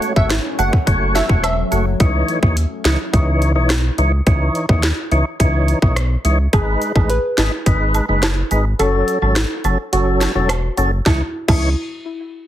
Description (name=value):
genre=dancehall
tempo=106 BPM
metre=4/4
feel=straight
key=C# minor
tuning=A4 = 440 Hz
part: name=percussive tonewheel organ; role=accompaniment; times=0.0-11.7 s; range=E3 to C#5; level=-20 LUFS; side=left 1 dB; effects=overdrive, chorus vibrato, slow rotary speaker
part: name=deep dark ambient pad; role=sustained chords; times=0.0-2.0 s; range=F#3 to C#4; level=-29 LUFS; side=left 2 dB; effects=chorus, built-in reverb, sidechain pumping
part: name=island pop drum kit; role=drums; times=0.0-11.6 s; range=crash cymbal, hi-hat, kick drum, rim click, snare drum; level=-18 LUFS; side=equal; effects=none
part: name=cabasa and woodblock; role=percussion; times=0.0-1.9, 6.5-11.8 s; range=none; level=-28 LUFS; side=right 6 dB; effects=none
part: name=glassy wavetable pluck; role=melody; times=0.2-1.8 s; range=E5 to F#5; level=-24 LUFS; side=right 2 dB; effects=chorus, ping-pong delay
part: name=round analog bass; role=bass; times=0.2-11.7 s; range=E1 to D#2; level=-18 LUFS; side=equal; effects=none
part: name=soft round pluck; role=second line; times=6.5-11.7 s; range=E4 to B4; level=-24 LUFS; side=right 1 dB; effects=chorus, ping-pong delay
room=little or no reverb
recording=heavily compressed radio sound, multiband compression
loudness=-14 LUFS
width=side -12 dB against mid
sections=0.0-2.0 A section; 2.0-11.1 B section; 11.1-12.5 C section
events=kick muted 8.8-11.1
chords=0.0 F#m; 2.0 C#madd9; 6.5 G#m; 8.8 F#m; 11.1 C#madd9